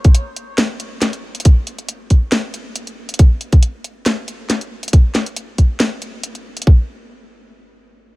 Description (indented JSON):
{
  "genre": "deep dubstep",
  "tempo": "138 BPM",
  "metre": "4/4",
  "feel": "swing 53% on 16ths, half-time",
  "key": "none",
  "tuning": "none",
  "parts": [
    { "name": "electronic kick drum", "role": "drums", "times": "0.0-6.8 s", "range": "none", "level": "-9 LUFS", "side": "equal", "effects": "none" },
    { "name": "garage drum kit", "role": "drums", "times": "0.0-6.7 s", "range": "hi-hat, snare drum", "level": "-20 LUFS", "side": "equal", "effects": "none" }
  ],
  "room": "little or no reverb",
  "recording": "none",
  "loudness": "-14 LUFS",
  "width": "side -21 dB against mid",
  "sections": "0.0-6.7 A section; 6.7-8.2 B section",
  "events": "none",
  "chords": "none"
}